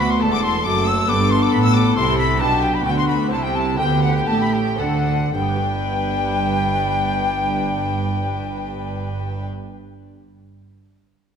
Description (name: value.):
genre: classical, baroque-style concerto movement with solo episodes.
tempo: 107-138 BPM.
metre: 3/4.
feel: straight.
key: G major.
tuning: A4 = 440 Hz.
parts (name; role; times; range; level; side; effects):
silver concert flute; melody; 0.0-9.5 s; F#5 to E6; -24 LUFS; left 1 dB; none.
warm chamber violin section; melody; 0.0-9.5 s; F#5 to E6; -27 LUFS; left 6 dB; none.
warm chamber violin section; second line; 0.0-9.5 s; E4 to B4; -27 LUFS; left 2 dB; none.
dark chamber viola section; accompaniment; 0.0-9.5 s; A3 to E4; -25 LUFS; left 1 dB; none.
lute; accompaniment; 0.0-9.7 s; D2 to D5; -29 LUFS; left 1 dB; none.
rich chamber cello section; bass; 0.0-9.5 s; D2 to D3; -24 LUFS; right 3 dB; none.
rich chamber double bass section; bass; 0.0-9.5 s; E1 to D2; -25 LUFS; right 3 dB; none.
room: moderate concert hall reverb, RT60 2.1 s.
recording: none.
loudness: -17 LUFS.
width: side -7 dB against mid.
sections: 0.0-5.3 A section; 5.3-8.7 B section.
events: slowing down 1.7-5.3.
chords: 0.0 D7; 1.1 G; 2.4 G/B; 3.3 C; 3.8 D7sus4; 4.8 D7; 5.3 G.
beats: 0.22 0.66 | 1.09 1.53 1.97 | 2.41 2.86 3.31 | 3.79 4.28 4.80 | 5.34 5.90 6.46 | 7.02 7.58 8.14.